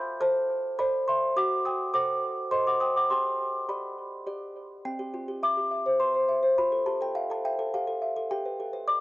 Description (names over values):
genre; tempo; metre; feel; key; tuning
classical, lullaby for music box; 104 BPM; 3/4; straight; C major; A4 = 445 Hz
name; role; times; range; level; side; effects
music box; solo; 0.0-9.0 s; C4 to G6; -25 LUFS; equal; cassette tape, tape echo
room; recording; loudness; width
wet booth ambience, RT60 0.2 s; home recording on cassette; -25 LUFS; side -18 dB against mid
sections
0.0-4.8 A section; 4.8-9.0 B section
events
none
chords
0.0 Dm7/F; 1.4 F#dim7; 3.1 G; 4.8 C; 6.6 Fmaj7; 8.3 G